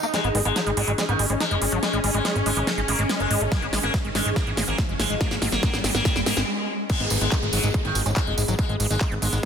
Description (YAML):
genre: psychedelic trance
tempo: 142 BPM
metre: 4/4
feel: straight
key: G# minor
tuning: A4 = 440 Hz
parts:
  - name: swarming drone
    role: sustained chords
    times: 0.0-9.5 s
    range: B3 to D#4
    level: -31 LUFS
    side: left 1 dB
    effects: built-in reverb, sidechain pumping
  - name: screaming distorted acid line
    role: riff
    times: 0.0-9.5 s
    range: F#3 to D#4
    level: -30 LUFS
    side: moving between left 6 dB and right 5 dB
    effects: distortion, chorus, auto-pan, vintage 12-bit sampler grit, sidechain pumping, tape echo
  - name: tambourine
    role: percussion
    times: 0.0-0.1, 6.9-9.4 s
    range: none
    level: -32 LUFS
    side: right 2 dB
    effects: none
  - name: noise sweep, riser and downlifter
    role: sound effects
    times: 0.0-9.5 s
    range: none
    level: -33 LUFS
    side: equal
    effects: none
  - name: sitar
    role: melody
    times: 0.1-9.4 s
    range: D#3 to A#3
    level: -28 LUFS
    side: left 1 dB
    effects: phaser, sidechain pumping, low-pass filter, tape echo
  - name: big-room dance drum kit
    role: drums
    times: 0.1-9.5 s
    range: crash cymbal, handclaps, hi-hat, snare drum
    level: -27 LUFS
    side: right 1 dB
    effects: studio reverb
  - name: fat analog bass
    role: bass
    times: 0.2-9.4 s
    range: F#1 to G#2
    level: -26 LUFS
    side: equal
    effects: tube saturation
  - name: resonant blip pluck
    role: second line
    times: 0.3-1.5, 7.1-8.2 s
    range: B3 to C#4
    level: -38 LUFS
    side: right 4 dB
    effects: none
  - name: electronic kick drum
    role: drums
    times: 3.5-9.5 s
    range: none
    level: -25 LUFS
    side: equal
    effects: distortion, overdrive, studio reverb
room: light reverb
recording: dense, heavily limited modern master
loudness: -20 LUFS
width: side -7 dB against mid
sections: 0.1-6.9 A section; 6.9-9.5 B section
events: build-up 0.1-6.9; drum fill 0.1-6.5; riser 0.1-6.5; filter sweep on acid bass 0.1-6.9; filter sweep on sitar 0.1-6.9; stop 6.5-6.9; drop 6.9-9.5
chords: 0.1 G#5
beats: | 0.14 0.56 0.98 1.40 | 1.83 2.25 2.67 3.10 | 3.52 3.94 4.36 4.79 | 5.21 5.63 6.05 6.47 | 6.90 7.32 7.74 8.16 | 8.59 9.01 9.43